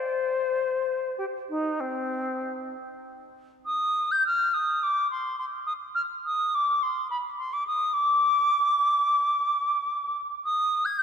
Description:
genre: classical, baroque-style fantasia for unaccompanied flute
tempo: 63-74 BPM (dotted quarters)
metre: 12/8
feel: rubato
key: C minor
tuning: A4 = 439 Hz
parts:
  - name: silver concert flute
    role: solo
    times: 0.0-11.0 s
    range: C4 to Ab6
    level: -24 LUFS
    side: left 1 dB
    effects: none
room: wet church reverb, RT60 3.3 s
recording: minimal, uncompressed stereo recording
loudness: -24 LUFS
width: side -7 dB against mid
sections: 0.0-3.7 A section; 3.7-11.0 B section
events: none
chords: none

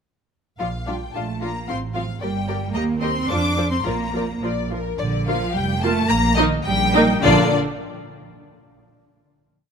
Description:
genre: quick classical-period movement for string orchestra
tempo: 101-115 BPM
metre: 2/4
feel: rubato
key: Bb major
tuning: A4 = 440 Hz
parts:
  - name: warm symphonic violin section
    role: melody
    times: 0.6-7.6 s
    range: D5 to D6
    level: -26 LUFS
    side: left 6 dB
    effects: none
  - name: rich studio violin section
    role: second line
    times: 0.6-7.6 s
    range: D4 to Bb5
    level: -27 LUFS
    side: left 5 dB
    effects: none
  - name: rich chamber viola section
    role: accompaniment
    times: 0.6-7.6 s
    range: F3 to G4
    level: -23 LUFS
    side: right 1 dB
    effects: none
  - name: rich chamber cello section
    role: bass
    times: 0.6-7.6 s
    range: D3 to D4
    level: -25 LUFS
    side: right 2 dB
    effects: none
  - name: warm chamber double bass section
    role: bass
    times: 0.6-7.6 s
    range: F1 to F2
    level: -25 LUFS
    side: right 3 dB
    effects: none
room: light reverb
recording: close, detailed microphones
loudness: -18 LUFS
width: side -6 dB against mid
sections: 0.6-5.0 A section; 5.0-7.2 coda; 7.2-8.4 final chord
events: none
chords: 0.6 Bb; 1.7 F/A; 2.2 Gm; 2.7 Eb; 3.3 F; 3.8 Bb; 6.1 Eb/Bb; 7.2 Bb

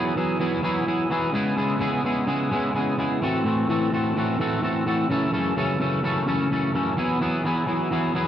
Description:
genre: rock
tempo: 128 BPM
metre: 4/4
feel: straight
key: E major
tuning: A4 = 440 Hz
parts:
  - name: twangy electric guitar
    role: solo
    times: 0.0-8.3 s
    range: F#2 to A4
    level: -21 LUFS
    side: equal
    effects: lush chorus
room: little or no reverb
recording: dry, close 1970s-style studio recording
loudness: -21 LUFS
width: side -10 dB against mid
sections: 0.0-8.3 A section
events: none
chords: 0.0 Eadd9; 1.3 C#m7; 3.2 Am6; 5.1 F#m7; 7.0 Eadd9

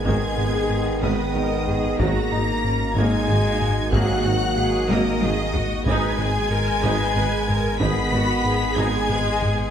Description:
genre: cinematic, hybrid orchestral and electronic film score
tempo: 62 BPM (dotted quarters)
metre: 6/8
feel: straight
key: G# minor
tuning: A4 = 440 Hz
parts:
  - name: rich symphonic violin section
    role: melody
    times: 0.0-9.7 s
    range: D#6 to B6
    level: -30 LUFS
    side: equal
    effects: none
  - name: rich symphonic violin section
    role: second line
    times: 0.0-9.7 s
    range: D#5 to B5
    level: -28 LUFS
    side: left 2 dB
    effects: none
  - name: dark trombone section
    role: sustained chords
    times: 0.0-9.7 s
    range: D#3 to B3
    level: -30 LUFS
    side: right 3 dB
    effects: none
  - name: mellow French horn section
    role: sustained chords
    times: 0.0-9.7 s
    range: D#3 to B3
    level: -28 LUFS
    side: left 2 dB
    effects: none
  - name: warbly tape-like pad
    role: sustained chords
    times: 0.0-9.7 s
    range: A#3 to D#5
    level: -29 LUFS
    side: right 1 dB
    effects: chorus, built-in reverb, phaser
  - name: smooth gliding synth bass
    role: riff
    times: 0.0-9.6 s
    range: G#2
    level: -26 LUFS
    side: left 2 dB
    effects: none
  - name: warm sub bass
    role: bass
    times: 0.0-9.7 s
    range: G#1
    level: -30 LUFS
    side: equal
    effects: none
  - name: warm symphonic viola section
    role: accompaniment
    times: 0.1-9.2 s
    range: D#3 to B4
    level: -30 LUFS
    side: equal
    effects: none
  - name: rich symphonic cello section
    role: bass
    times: 0.1-9.7 s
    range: C#4 to B4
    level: -30 LUFS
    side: right 2 dB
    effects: none
  - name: warm symphonic double bass section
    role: bass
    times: 0.1-9.2 s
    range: G#1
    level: -30 LUFS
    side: right 3 dB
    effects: none
  - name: warm tuba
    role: bass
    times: 0.1-9.2 s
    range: G#1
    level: -31 LUFS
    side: right 4 dB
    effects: none
  - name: taiko ensemble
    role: drums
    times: 0.1-9.7 s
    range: none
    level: -28 LUFS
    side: equal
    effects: none
room: wet scoring stage reverb, RT60 1.8 s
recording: none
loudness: -19 LUFS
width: side -8 dB against mid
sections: 0.0-9.7 A section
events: drum fill 4.9-5.9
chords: 0.0 G#m; 2.0 D#m/G#; 5.9 G#m

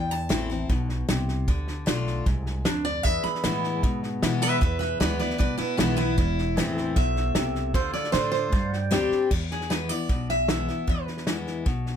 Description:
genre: honky-tonk and classic country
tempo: 153 BPM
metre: 4/4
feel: straight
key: unclear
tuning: A4 = 440 Hz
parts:
  - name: picked steel-string acoustic guitar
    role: melody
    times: 0.0-11.3 s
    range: B3 to B5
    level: -28 LUFS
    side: right 3 dB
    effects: none
  - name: picked steel-string acoustic guitar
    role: accompaniment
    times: 0.0-12.0 s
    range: E2 to G4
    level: -29 LUFS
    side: left 4 dB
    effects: none
  - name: upright bass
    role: bass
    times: 0.0-12.0 s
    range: E1 to B2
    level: -30 LUFS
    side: equal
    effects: none
  - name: natural country drum kit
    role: drums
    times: 0.1-11.9 s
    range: crash cymbal, hi-hat, kick drum, snare drum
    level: -27 LUFS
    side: equal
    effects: none
  - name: pedal steel guitar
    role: sustained chords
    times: 3.1-9.3 s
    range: G#4 to G5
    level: -36 LUFS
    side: right 2 dB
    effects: none
room: little or no reverb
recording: close, detailed microphones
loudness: -23 LUFS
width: side -8 dB against mid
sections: 0.0-9.3 A section; 9.3-12.0 B section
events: steel-string acoustic guitar solo 0.0-9.3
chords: 0.0 Am; 1.5 Dm; 3.1 E; 6.2 Am/E; 7.7 Dm; 8.5 Gsus4; 9.3 E

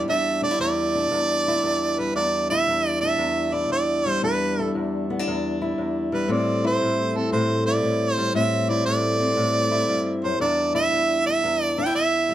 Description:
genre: acoustic country blues, solo or duo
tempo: 116 BPM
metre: 4/4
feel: swing 66% on 8ths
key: E minor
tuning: A4 = 441 Hz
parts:
  - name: clear harmonica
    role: melody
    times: 0.0-12.3 s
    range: A4 to G5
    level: -22 LUFS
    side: right 2 dB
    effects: none
  - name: fingerpicked steel-string acoustic guitar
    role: accompaniment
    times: 0.0-12.3 s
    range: E2 to E4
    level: -24 LUFS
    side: left 1 dB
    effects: none
room: moderate small room reverb, RT60 0.5 s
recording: none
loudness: -20 LUFS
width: side -12 dB against mid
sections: 0.0-12.3 A section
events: none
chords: 0.0 Em7; 6.3 Am7; 10.4 Em7

